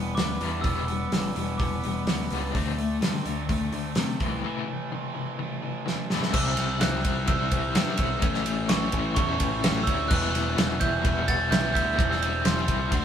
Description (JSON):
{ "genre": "indie rock", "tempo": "127 BPM", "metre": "4/4", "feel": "straight", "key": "unclear", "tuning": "A4 = 440 Hz", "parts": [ { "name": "overdriven electric guitar", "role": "riff", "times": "0.0-13.0 s", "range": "A2 to F#4", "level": "-30 LUFS", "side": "left 5 dB", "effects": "tremolo" }, { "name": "raw garage guitar", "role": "riff", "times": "0.0-6.3 s", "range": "E3 to D4", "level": "-34 LUFS", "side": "right 3 dB", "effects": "overdrive" }, { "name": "growling picked electric bass", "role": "bass", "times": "0.0-13.0 s", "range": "E1 to C3", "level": "-31 LUFS", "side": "equal", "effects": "overdrive" }, { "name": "glockenspiel with soft plastic mallets", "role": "melody", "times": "0.1-2.3, 6.3-13.0 s", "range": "C6 to A6", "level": "-31 LUFS", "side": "right 3 dB", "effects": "none" }, { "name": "loose indie drum kit", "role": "drums", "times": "0.2-13.0 s", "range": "crash cymbal, hi-hat, kick drum, ride cymbal, snare drum", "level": "-26 LUFS", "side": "right 1 dB", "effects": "none" }, { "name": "overdriven tine electric piano", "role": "second line", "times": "6.3-12.9 s", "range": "G4 to F#5", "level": "-37 LUFS", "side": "right 5 dB", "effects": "medium tremolo" } ], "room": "light reverb", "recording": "band playing live in one room", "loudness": "-23 LUFS", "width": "side -9 dB against mid", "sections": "0.0-6.3 A section; 6.3-13.0 B section", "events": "break 4.4-6.3; drum fill 5.9-6.3", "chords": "0.0 Em7; 2.5 D7sus4; 4.2 Am/C; 6.3 C; 8.2 A; 10.1 Emadd9; 12.0 C/E" }